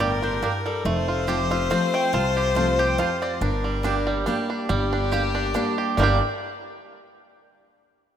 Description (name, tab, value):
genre	bluegrass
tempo	141 BPM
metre	3/4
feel	swing 54% on 8ths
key	G minor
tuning	A4 = 440 Hz
part	mandolin	melody	0.0-3.8, 6.0-6.2 s	A4 to A5	-31 LUFS	right 1 dB	none
part	clear fiddle	second line	0.0-6.2 s	G4 to C5	-27 LUFS	left 6 dB	none
part	picked steel-string acoustic guitar	accompaniment	0.0-6.2 s	F2 to G4	-28 LUFS	left 1 dB	none
part	bluegrass banjo	arpeggios	0.0-6.2 s	G3 to G4	-27 LUFS	right 5 dB	slapback echo
part	mandolin	stabs	0.0-6.2 s	Bb3 to A5	-33 LUFS	right 6 dB	none
part	upright bass	bass	0.0-6.2 s	F1 to C2	-26 LUFS	equal	none
room	moderate lush hall reverb, RT60 2.6 s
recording	rough home demo mix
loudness	-21 LUFS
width	side -9 dB against mid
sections	0.0-4.7 A section; 4.7-6.0 B section; 6.0-7.3 C section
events	none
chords	0.0 Gm; 0.9 F; 3.4 Gm